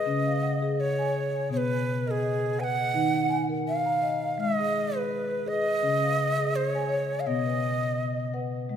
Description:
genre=world meditative, meditative tuned percussion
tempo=84 BPM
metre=4/4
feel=swing 56% on 16ths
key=unclear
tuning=A4 = 442 Hz
part: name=breathy Native American-style cedar flute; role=melody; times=0.0-8.3 s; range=G#4 to G#5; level=-27 LUFS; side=right 1 dB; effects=ping-pong delay
part: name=marimba with soft mallets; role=arpeggios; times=0.0-8.8 s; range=B2 to A#5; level=-28 LUFS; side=left 2 dB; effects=ping-pong delay
room=wet recital hall reverb, RT60 1.6 s, small room ambience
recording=none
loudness=-24 LUFS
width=side -8 dB against mid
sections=0.0-8.7 A section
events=none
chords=0.1 C#; 1.5 B; 2.9 D#m; 4.4 G#m; 5.8 C#; 7.3 B

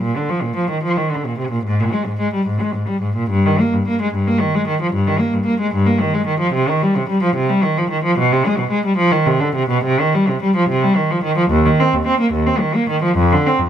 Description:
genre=classical, baroque-style suite movement for unaccompanied cello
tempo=74 BPM (dotted quarters)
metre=12/8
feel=rubato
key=Eb major, C minor from 6.5 s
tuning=A4 = 440 Hz
part: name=rich cello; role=solo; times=0.0-13.7 s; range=Eb2 to C4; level=-15 LUFS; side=equal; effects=none
room=moderate stone room reverb, RT60 1.3 s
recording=close, detailed microphones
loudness=-15 LUFS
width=side -9 dB against mid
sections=0.0-13.7 A section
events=none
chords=none

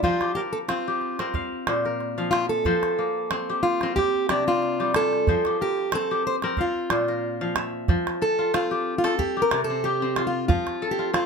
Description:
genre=west african traditional, West African string and xylophone music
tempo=92 BPM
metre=4/4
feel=swing 54% on 16ths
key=F major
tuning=A4 = 439 Hz
part: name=fingerpicked plugged-in steel-string acoustic guitar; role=melody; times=0.0-11.3 s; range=F4 to C5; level=-25 LUFS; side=equal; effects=none
part: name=kora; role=arpeggios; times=0.0-11.3 s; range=Bb2 to F5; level=-26 LUFS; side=left 2 dB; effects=none
part: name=calabash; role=percussion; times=0.0-11.3 s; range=none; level=-27 LUFS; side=right 3 dB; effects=none
room=moderate studio reverb, RT60 0.5 s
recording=none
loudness=-22 LUFS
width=side -5 dB against mid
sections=0.0-7.9 A section; 7.9-11.3 B section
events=steel-string acoustic guitar solo 7.9-11.3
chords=0.0 F5; 1.3 Bb5; 2.7 F; 4.0 C5; 5.3 F5; 6.6 Bb5; 7.9 F; 9.2 C5; 10.5 F

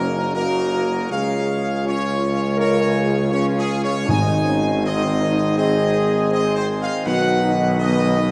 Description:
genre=classical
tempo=81 BPM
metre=4/4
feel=straight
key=Db major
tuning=A4 = 440 Hz
part: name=warm trumpet section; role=melody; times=0.0-8.3 s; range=Ab4 to Ab5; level=-26 LUFS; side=equal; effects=none
part: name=bright trombone section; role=sustained chords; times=0.0-8.3 s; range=Db3 to Eb4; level=-30 LUFS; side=equal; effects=none
part: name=mellow French horn section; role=sustained chords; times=0.0-8.3 s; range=Cb4 to Bb4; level=-27 LUFS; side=equal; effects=none
part: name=pipe organ, plenum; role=sustained chords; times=0.0-8.3 s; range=Db3 to Db5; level=-30 LUFS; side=equal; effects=none
part: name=clear tuba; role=bass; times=0.0-8.3 s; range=Gb1 to Db2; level=-24 LUFS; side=equal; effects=none
part: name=timpani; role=percussion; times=4.1-5.2 s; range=Ab2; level=-27 LUFS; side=equal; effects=none
room=wet scoring stage reverb, RT60 1.9 s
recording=dark, warm production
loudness=-20 LUFS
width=mono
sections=0.0-8.3 A section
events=none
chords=0.0 Gb; 1.1 Db; 4.1 Ab; 7.1 Cb

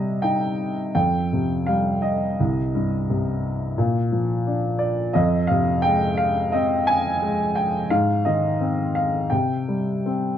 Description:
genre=classical, lyrical solo piano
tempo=80-88 BPM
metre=4/4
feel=rubato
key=unclear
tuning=A4 = 441 Hz
part: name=warm upright piano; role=solo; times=0.0-10.4 s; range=C2 to Ab5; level=-20 LUFS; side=equal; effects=none
room=light reverb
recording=dark, warm production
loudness=-20 LUFS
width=side -10 dB against mid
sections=0.0-10.4 A section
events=none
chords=0.0 Cm; 1.0 Fsus2; 2.4 Cm; 3.8 Bb; 5.2 Fm; 7.9 Ab; 9.3 C5

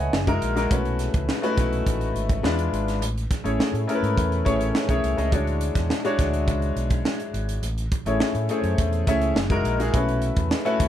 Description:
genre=polished 1980s jazz-funk pop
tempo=104 BPM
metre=4/4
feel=straight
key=unclear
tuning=A4 = 440 Hz
part: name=clear concert grand piano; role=accompaniment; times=0.0-10.9 s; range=G#3 to G#5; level=-24 LUFS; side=left 2 dB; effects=lush chorus
part: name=overdriven fingered electric bass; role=bass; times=0.0-10.9 s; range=F#1 to A2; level=-26 LUFS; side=equal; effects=none
part: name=crisp fusion drum kit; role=drums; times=0.1-10.9 s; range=hi-hat, kick drum, snare drum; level=-26 LUFS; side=right 1 dB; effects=none
room=light reverb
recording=none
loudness=-21 LUFS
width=side -11 dB against mid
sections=0.0-10.9 A section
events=none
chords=0.1 F#13; 0.7 B9sus4; 2.4 E7b9; 3.0 Amaj7; 5.3 Dmaj9#11; 7.6 Amaj7; 9.4 F#13; 9.9 B9sus4

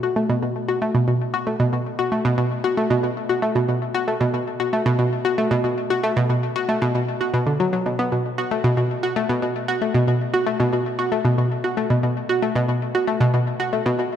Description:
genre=ambient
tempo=115 BPM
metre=4/4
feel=straight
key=unclear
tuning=A4 = 439 Hz
part: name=analog pluck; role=solo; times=0.0-14.0 s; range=B2 to F#4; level=-19 LUFS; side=equal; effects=chorus, ping-pong delay
room=moderate plate reverb, RT60 2.7 s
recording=none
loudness=-19 LUFS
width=side -9 dB against mid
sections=0.0-14.2 A section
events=none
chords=none

